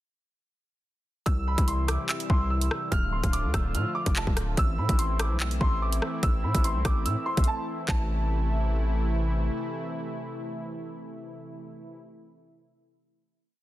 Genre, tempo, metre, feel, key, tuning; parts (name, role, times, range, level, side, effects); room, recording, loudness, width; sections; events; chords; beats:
hip hop, drill; 145 BPM; 4/4; half-time; A minor; A4 = 440 Hz
dark grand piano; melody; 1.3-9.1 s; A5 to F6; -32 LUFS; right 2 dB; digital delay
warm analog pad; sustained chords; 1.3-12.0 s; C3 to F4; -34 LUFS; equal; chorus
hard-hitting 808-style bass; bass; 1.3-9.5 s; D1 to A2; -27 LUFS; equal
drill drum kit; drums; 1.3-8.0 s; handclaps, hi-hat, kick drum, rim click; -27 LUFS; equal; soft clipping on snare
digital ambience; dense, heavily limited modern master; -24 LUFS; side -15 dB against mid
1.3-7.9 hook; 7.9-11.2 final chord
break 7.5-7.9
1.3 C; 2.9 Dm; 4.6 Am
| 1.26 1.68 2.09 2.50 | 2.92 3.33 3.75 4.16 | 4.57 4.99 5.40 5.82 | 6.23 6.64 7.06 7.47 | 7.88 8.30 8.71 9.12 | 9.54 9.95 10.37 10.78